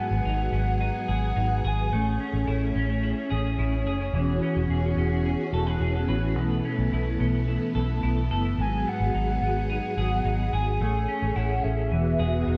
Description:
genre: dream pop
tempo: 108 BPM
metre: 4/4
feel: straight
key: E major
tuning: A4 = 440 Hz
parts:
  - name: warbly nostalgic lead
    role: melody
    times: 0.0-2.2, 8.6-12.6 s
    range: E5 to G#5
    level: -33 LUFS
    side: equal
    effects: chorus, tremolo, tape echo
  - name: ensemble organ-string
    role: sustained chords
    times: 0.0-12.6 s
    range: E3 to G#4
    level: -32 LUFS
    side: equal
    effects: ensemble chorus
  - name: semi-hollow electric guitar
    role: arpeggios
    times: 0.0-12.6 s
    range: G#2 to B4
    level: -34 LUFS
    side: equal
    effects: analog chorus, tape echo
  - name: vintage muted fingered electric bass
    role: bass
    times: 0.1-12.6 s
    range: E1 to B1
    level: -29 LUFS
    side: equal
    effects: none
room: moderate plate reverb, RT60 2.9 s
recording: dreamy mix soaked in reverb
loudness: -26 LUFS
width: mono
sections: 0.0-12.6 A section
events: none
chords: 0.0 G#m7; 1.9 Amaj7; 4.1 E6; 6.4 B9sus4; 8.6 G#m7; 10.8 Amaj7; 11.9 Emaj7

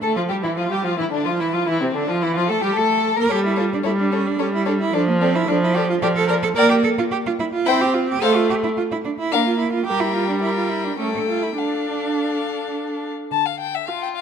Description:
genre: quick classical-period movement for string quartet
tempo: 109 BPM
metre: 3/4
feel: rubato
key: D minor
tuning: A4 = 440 Hz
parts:
  - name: warm violin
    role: melody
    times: 0.0-14.2 s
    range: C4 to A5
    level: -26 LUFS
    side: left 12 dB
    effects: none
  - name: rich violin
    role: second line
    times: 0.0-14.2 s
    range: C4 to D5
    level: -27 LUFS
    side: left 4 dB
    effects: none
  - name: rich viola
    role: accompaniment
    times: 0.0-14.2 s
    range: C3 to F4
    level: -22 LUFS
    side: right 1 dB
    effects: none
  - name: rich cello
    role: bass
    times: 0.0-13.8 s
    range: D3 to Bb4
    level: -22 LUFS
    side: right 5 dB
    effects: none
room: moderate concert hall reverb, RT60 2.4 s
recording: none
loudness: -18 LUFS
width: side -7 dB against mid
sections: 0.0-13.3 A section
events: none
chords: 0.0 Dm; 1.7 Edim; 3.3 A7/G; 4.9 Dm/F; 6.6 Gm/Bb; 7.7 C; 8.2 F/A; 9.3 Bb; 9.9 Gm; 11.0 A7; 11.6 Dm

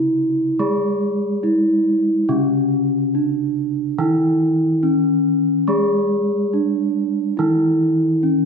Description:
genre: gamelan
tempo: 70 BPM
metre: 4/4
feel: straight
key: unclear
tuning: A4 = 439 Hz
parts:
  - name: gamelan-type bronze metallophone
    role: melody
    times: 0.0-8.5 s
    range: C#4 to G#4-30c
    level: -17 LUFS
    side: equal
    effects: none
  - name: gamelan-type bronze metallophone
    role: accompaniment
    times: 0.0-8.5 s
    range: C#3 to G#3-30c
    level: -23 LUFS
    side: right 2 dB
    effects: none
room: wet recital hall reverb, RT60 1.4 s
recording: dark, warm production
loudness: -16 LUFS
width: side -5 dB against mid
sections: 0.0-8.5 A section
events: none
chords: none

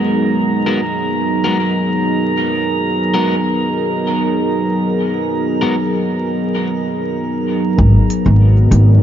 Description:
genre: ambient dub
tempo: 97 BPM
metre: 4/4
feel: straight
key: G# minor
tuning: A4 = 440 Hz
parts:
  - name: warm analog pad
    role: sustained chords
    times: 0.0-9.0 s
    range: F#3 to A#4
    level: -17 LUFS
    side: right 1 dB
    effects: chorus
  - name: electric guitar at the edge of break-up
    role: stabs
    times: 0.0-5.8 s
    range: G#3 to A#4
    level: -22 LUFS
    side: left 2 dB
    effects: low-pass filter, dub echo
  - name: drifting glass-harmonics texture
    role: texture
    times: 0.0-7.8 s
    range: A#5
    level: -24 LUFS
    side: right 2 dB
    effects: chorus, built-in reverb
  - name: upright bass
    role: bass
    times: 7.8-9.0 s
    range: G#1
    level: -8 LUFS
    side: equal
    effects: none
  - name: electronic kick drum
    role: drums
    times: 7.8-7.9 s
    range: none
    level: -16 LUFS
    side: equal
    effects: overdrive
  - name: electronic hi-hat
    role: drums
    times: 8.1-8.8 s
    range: none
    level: -36 LUFS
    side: left 1 dB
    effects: none
room: light reverb, digital ambience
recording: vinyl crackle, nothing above 7.5 kHz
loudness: -13 LUFS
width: side -10 dB against mid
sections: 0.0-7.8 A section; 7.8-9.0 B section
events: filter sweep on clean electric guitar 0.0-7.8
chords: 0.0 G#m9

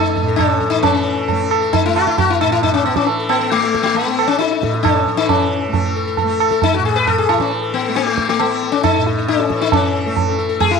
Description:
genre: indian classical, Hindustani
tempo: 135 BPM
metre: 5/4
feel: straight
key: A raga yaman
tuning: A4 = 444 Hz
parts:
  - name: sitar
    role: melody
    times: 0.0-10.8 s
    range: A3 to B4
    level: -16 LUFS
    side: left 9 dB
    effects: slapback echo
  - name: tanpura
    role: drone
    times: 0.0-10.8 s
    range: A2 to A3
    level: -23 LUFS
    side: right 2 dB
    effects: none
  - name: tabla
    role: percussion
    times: 0.2-10.8 s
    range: none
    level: -18 LUFS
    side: right 9 dB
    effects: none
room: light reverb, small room ambience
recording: 1960s-style stereo with parts hard left and right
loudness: -14 LUFS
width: side -5 dB against mid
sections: 0.0-10.8 A section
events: none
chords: none

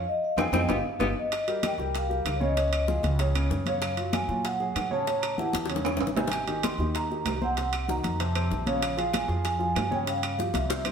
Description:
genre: Afro-Cuban jazz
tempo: 192 BPM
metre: 4/4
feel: straight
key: unclear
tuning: A4 = 440 Hz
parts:
  - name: vibraphone with soft mallets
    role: melody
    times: 0.0-10.9 s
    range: Db5 to C6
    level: -30 LUFS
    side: equal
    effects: none
  - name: clear tenor saxophone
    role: second line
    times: 0.0-1.1 s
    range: B3 to C4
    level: -34 LUFS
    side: left 4 dB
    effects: none
  - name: warm grand piano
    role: accompaniment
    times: 0.0-10.9 s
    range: C3 to Db5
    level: -32 LUFS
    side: right 2 dB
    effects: none
  - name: upright bass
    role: bass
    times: 0.0-10.9 s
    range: G1 to Bb2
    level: -31 LUFS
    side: equal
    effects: none
  - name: bongos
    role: percussion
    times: 0.4-10.9 s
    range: none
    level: -36 LUFS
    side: left 5 dB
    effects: none
  - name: claves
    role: percussion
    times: 0.4-10.9 s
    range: none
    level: -41 LUFS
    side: right 2 dB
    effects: none
  - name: congas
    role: percussion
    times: 0.4-10.9 s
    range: none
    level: -35 LUFS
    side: left 2 dB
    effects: none
  - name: timbales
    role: percussion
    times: 0.4-10.9 s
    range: none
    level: -34 LUFS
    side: right 5 dB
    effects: none
room: wet stone room reverb, RT60 1.1 s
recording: band playing live in one room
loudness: -25 LUFS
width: side -7 dB against mid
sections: 0.0-1.3 A section; 1.3-10.9 B section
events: band accent 0.1-1.3; drum fill 0.5-1.3, 5.5-6.3, 10.5-10.9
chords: 0.0 Fm9; 0.7 G7(#5, no3); 1.3 Cm7; 2.6 Dbadd9; 3.8 Gbmaj9; 5.1 A7; 6.3 Abmaj9; 7.6 Cm7b5; 8.2 F; 8.8 Bbm7; 10.1 Dbmaj7#11

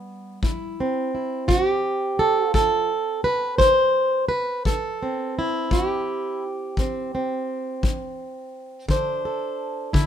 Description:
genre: acoustic country blues, solo or duo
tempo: 57 BPM (dotted quarters)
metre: 12/8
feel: straight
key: A minor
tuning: A4 = 440 Hz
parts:
  - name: fingerpicked plugged-in swing-style acoustic guitar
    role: melody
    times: 0.0-10.1 s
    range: A2 to C5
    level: -22 LUFS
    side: right 1 dB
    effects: none
  - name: kick drum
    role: drums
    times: 0.4-10.1 s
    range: none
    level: -24 LUFS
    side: left 2 dB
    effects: none
room: light reverb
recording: minimal, uncompressed stereo recording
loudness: -21 LUFS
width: side -9 dB against mid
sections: 0.0-10.1 A section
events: none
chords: 0.0 Am7; 8.9 D7(no3)

